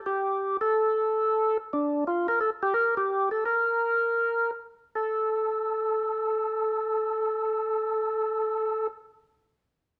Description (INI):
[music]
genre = jazz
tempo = 151-178 BPM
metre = 4/4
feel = swing 65% on 8ths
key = unclear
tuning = A4 = 438 Hz
[part]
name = percussive tonewheel organ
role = solo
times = 0.1-8.9 s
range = D4 to Bb4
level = -27 LUFS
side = equal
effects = slow rotary speaker
[sound]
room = moderate studio reverb, RT60 0.9 s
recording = band playing live in one room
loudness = -27 LUFS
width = mono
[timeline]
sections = 0.0-4.9 A section; 4.9-8.1 B section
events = slowing down 2.1-4.9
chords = none